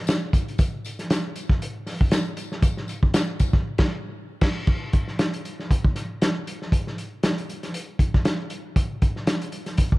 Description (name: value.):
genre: funk.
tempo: 117 BPM.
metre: 4/4.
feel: swing 56% on 16ths.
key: none.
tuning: none.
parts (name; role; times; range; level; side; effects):
vintage drum kit; drums; 0.1-10.0 s; crash cymbal, hi-hat, kick drum, snare drum; -22 LUFS; equal; none.
tambourine; percussion; 0.1-3.5 s; none; -41 LUFS; left 6 dB; none.
room: little or no reverb.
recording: dark, warm production.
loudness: -22 LUFS.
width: side -20 dB against mid.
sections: 0.0-4.7 A section; 4.7-10.0 B section.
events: band accent 3.7-4.7.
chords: none.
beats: 0.07 | 0.58 1.09 1.61 2.12 | 2.63 3.14 3.65 4.16 | 4.67 5.18 5.70 6.21 | 6.72 7.23 7.74 8.25 | 8.76 9.27 9.78.